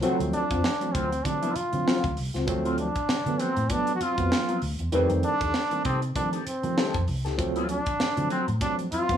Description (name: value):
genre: funk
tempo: 98 BPM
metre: 4/4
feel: swing 56% on 16ths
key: unclear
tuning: A4 = 440 Hz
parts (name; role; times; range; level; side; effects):
- mellow electric guitar; accompaniment; 0.0-9.2 s; F#3 to B4; -30 LUFS; left 4 dB; wah
- tine electric piano; stabs; 0.0-9.2 s; Eb3 to C4; -30 LUFS; right 2 dB; medium stereo tremolo
- crisp fusion drum kit; drums; 0.0-9.2 s; hi-hat, kick drum, snare drum; -30 LUFS; equal; none
- vintage muted fingered electric bass; bass; 0.2-9.2 s; C2 to F3; -30 LUFS; equal; none
- brilliant trombone; melody; 0.3-9.2 s; C4 to F#4; -28 LUFS; right 1 dB; plate reverb
room: moderate small room reverb, RT60 0.5 s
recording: small room ambience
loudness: -24 LUFS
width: side -9 dB against mid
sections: 0.0-9.2 A section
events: none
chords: 0.0 D7#9; 4.9 F9; 7.4 D7#9